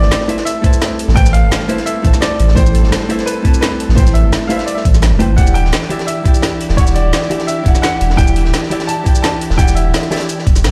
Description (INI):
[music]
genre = liquid drum and bass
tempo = 171 BPM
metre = 4/4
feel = straight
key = A minor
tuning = A4 = 440 Hz
[part]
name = bright baby grand piano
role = melody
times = 0.0-10.4 s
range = B4 to A5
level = -24 LUFS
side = equal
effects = dub echo
[part]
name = vintage hollow-body jazz guitar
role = accompaniment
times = 0.0-10.5 s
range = E3 to A5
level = -22 LUFS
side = equal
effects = digital delay
[part]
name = clear studio string section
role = sustained chords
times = 0.0-10.7 s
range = G3 to A4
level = -29 LUFS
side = equal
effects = sidechain pumping
[part]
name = warm sub bass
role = bass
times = 0.0-10.7 s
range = D1 to B1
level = -14 LUFS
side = equal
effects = none
[part]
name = crunchy breakbeat drum kit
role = drums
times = 0.0-10.7 s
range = hi-hat, snare drum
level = -28 LUFS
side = equal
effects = high-pass filter on hats, high-pass filter on snare, high-pass filter on room
[part]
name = drum and bass drum kit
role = drums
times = 0.1-10.7 s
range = hi-hat, shaker, snare drum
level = -23 LUFS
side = equal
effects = overdrive
[part]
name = electronic kick drum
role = drums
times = 0.6-10.5 s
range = none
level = -14 LUFS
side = equal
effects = none
[sound]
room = small room ambience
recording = played on a big sound system in a bare room, stone room reverb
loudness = -13 LUFS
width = mono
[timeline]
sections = 0.0-10.7 A section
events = none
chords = 0.0 Am9; 5.4 Em9